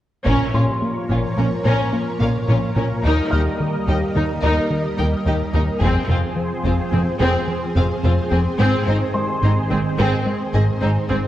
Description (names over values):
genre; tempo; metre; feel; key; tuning
cinematic, hybrid orchestral and electronic film score; 108 BPM; 5/4; straight; Bb dorian; A4 = 439 Hz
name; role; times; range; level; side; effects
rich studio violin section; melody; 0.3-11.2 s; Ab4 to G5; -31 LUFS; left 2 dB; none
rich symphonic violin section; second line; 0.3-11.2 s; C4 to Bb4; -27 LUFS; left 1 dB; none
rich symphonic viola section; accompaniment; 0.3-11.2 s; C4 to Eb4; -27 LUFS; equal; none
analog string pad; sustained chords; 0.3-11.3 s; Eb3 to Eb5; -25 LUFS; equal; ensemble chorus
rubbery square bass; riff; 0.3-11.3 s; Eb2 to Bb3; -22 LUFS; left 1 dB; none
rich symphonic cello section; bass; 0.3-11.2 s; Eb2 to Bb2; -26 LUFS; right 2 dB; none
warm symphonic double bass section; bass; 0.3-11.2 s; F1 to Eb2; -25 LUFS; right 2 dB; none
taiko ensemble; drums; 0.3-1.4, 5.8-6.9 s; none; -28 LUFS; equal; none
felt-muted upright piano; texture; 0.5-11.3 s; C6 to F6; -32 LUFS; left 1 dB; digital delay
room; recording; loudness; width
wet scoring stage reverb, RT60 1.8 s; worn, warbling old tape, cassette tape, warbly pitch drift; -17 LUFS; side -13 dB against mid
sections
0.3-11.3 A section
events
build-up 0.3-11.3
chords
0.3 Bbm; 3.0 Eb; 5.8 Fm; 8.6 Ab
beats
| 0.26 0.82 1.37 1.93 2.48 | 3.04 3.59 4.15 4.71 5.26 | 5.82 6.37 6.93 7.48 8.04 | 8.59 9.15 9.71 10.26 10.82